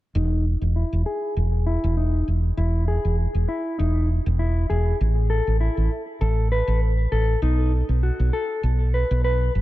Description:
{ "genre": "chillout", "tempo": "99 BPM", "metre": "4/4", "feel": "swing 55% on 16ths", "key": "E major", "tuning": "A4 = 440 Hz", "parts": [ { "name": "woody fretless electric bass", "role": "bass", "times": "0.1-9.6 s", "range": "E1 to B1", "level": "-20 LUFS", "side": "equal", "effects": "wide subtle chorus" }, { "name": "mellow electric guitar", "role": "arpeggios", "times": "0.2-9.5 s", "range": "D#4 to B4", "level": "-27 LUFS", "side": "left 2 dB", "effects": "low-pass filter, tape echo" } ], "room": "light reverb", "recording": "dark, warm production", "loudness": "-20 LUFS", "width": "side -16 dB against mid", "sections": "0.2-9.6 A section", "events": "filter sweep on clean electric guitar 0.2-9.6", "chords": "0.2 Emaj7; 5.0 A5; 7.4 B7", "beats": "| 0.16 0.76 1.37 1.97 | 2.58 3.19 3.79 4.40 | 5.00 5.61 6.22 6.82 | 7.43 8.03 8.64 9.25" }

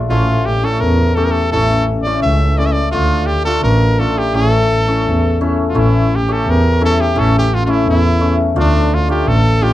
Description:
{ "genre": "klezmer", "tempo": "85 BPM", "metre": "2/4", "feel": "straight", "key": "A phrygian dominant", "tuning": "A4 = 445 Hz", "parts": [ { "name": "bright cornet", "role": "melody", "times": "0.1-9.7 s", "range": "D4 to E5", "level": "-18 LUFS", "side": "equal", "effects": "plate reverb" }, { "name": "hammered dulcimer", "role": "accompaniment", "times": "0.1-9.7 s", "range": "A3 to G4", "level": "-18 LUFS", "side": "left 3 dB", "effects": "none" }, { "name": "warm double bass", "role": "bass", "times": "0.1-9.7 s", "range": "A1 to E2", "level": "-14 LUFS", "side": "right 1 dB", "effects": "none" } ], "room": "moderate small room reverb, RT60 0.5 s", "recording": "dark, warm production", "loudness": "-12 LUFS", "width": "side -14 dB against mid", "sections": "0.0-5.8 A section; 5.8-9.7 A section", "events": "none", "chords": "0.1 A; 2.9 Dm; 4.3 A; 8.6 Dm", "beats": "| 0.11 0.82 | 1.52 2.23 | 2.94 3.64 | 4.35 5.05 | 5.76 6.46 | 7.17 7.87 | 8.57 9.28" }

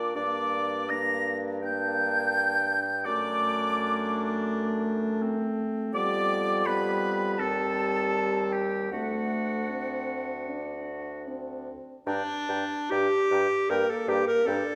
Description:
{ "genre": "classical, slow romantic movement for wind quintet", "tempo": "69-85 BPM", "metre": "4/4", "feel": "rubato", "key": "G minor", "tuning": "A4 = 440 Hz", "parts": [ { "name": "bright concert flute", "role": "melody", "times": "0.0-14.6 s", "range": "F#5 to Bb6", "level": "-34 LUFS", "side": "equal", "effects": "none" }, { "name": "clear oboe", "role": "second line", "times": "0.0-14.6 s", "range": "F#4 to Bb5", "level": "-34 LUFS", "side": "equal", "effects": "none" }, { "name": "clear clarinet", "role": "accompaniment", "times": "0.0-14.8 s", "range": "B3 to Bb4", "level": "-34 LUFS", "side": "equal", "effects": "none" }, { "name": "warm French horn", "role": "accompaniment", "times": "0.0-14.8 s", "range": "G3 to D4", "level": "-34 LUFS", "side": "equal", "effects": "none" }, { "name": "mellow bassoon", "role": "bass", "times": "0.0-14.6 s", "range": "D2 to Bb2", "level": "-36 LUFS", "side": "equal", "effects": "none" } ], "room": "wet recital hall reverb, RT60 1.7 s", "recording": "none", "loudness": "-28 LUFS", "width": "mono", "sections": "0.0-12.1 A section; 12.1-14.8 B section", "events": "none", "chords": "0.2 Gm; 3.1 D/F#; 5.9 G7/F; 7.4 Cm/Eb; 8.9 D; 12.1 Gm", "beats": "| 0.15 0.91 1.63 2.34 | 3.05 3.76 4.49 5.22 | 5.94 6.67 7.39 8.14 | 8.92 9.72 10.51 11.28 | 12.06 12.91 13.70 14.48" }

